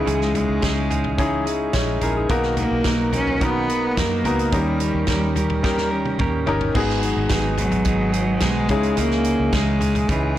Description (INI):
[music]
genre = piano-driven pop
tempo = 108 BPM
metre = 4/4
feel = straight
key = G# minor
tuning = A4 = 441 Hz
[part]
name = rich cello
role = melody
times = 0.0-10.4 s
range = E3 to C#4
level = -24 LUFS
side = equal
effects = none
[part]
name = clear baby grand piano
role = accompaniment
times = 0.0-10.4 s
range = G#2 to C#5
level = -24 LUFS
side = left 4 dB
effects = none
[part]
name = direct-recorded clean electric guitar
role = riff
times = 0.0-10.4 s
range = G#2 to A#4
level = -26 LUFS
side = right 6 dB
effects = none
[part]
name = vintage muted fingered electric bass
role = bass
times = 0.0-10.4 s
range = G1 to F#2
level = -26 LUFS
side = equal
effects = none
[part]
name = natural country drum kit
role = drums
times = 0.1-10.2 s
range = crash cymbal, hi-hat, kick drum, snare drum, toms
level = -25 LUFS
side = equal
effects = none
[sound]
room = light reverb, small room reverb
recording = blown-out, overdriven recording, overdrive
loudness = -18 LUFS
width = side -12 dB against mid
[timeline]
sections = 0.0-6.8 A section; 6.8-10.4 B section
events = drum fill 5.6-6.8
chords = 0.0 C#madd9; 2.3 Bmaj7; 4.5 D#7; 6.8 G#m7; 8.7 C#madd9